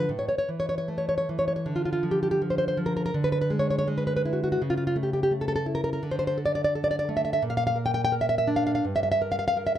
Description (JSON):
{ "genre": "romantic piece for solo classical guitar", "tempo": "83 BPM", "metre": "2/4", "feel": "rubato", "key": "D minor", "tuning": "A4 = 440 Hz", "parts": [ { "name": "nylon-string guitar", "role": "solo", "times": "0.0-9.8 s", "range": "G2 to G5", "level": "-24 LUFS", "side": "equal", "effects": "none" } ], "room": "light reverb", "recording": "close, detailed microphones", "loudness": "-24 LUFS", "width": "side -10 dB against mid", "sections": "0.0-1.7 A section; 1.7-9.8 B section", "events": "none", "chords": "0.1 A5; 1.7 Dm; 3.1 E7/D; 4.6 A/C#; 6.0 D5; 7.4 Bb; 8.9 Gm6" }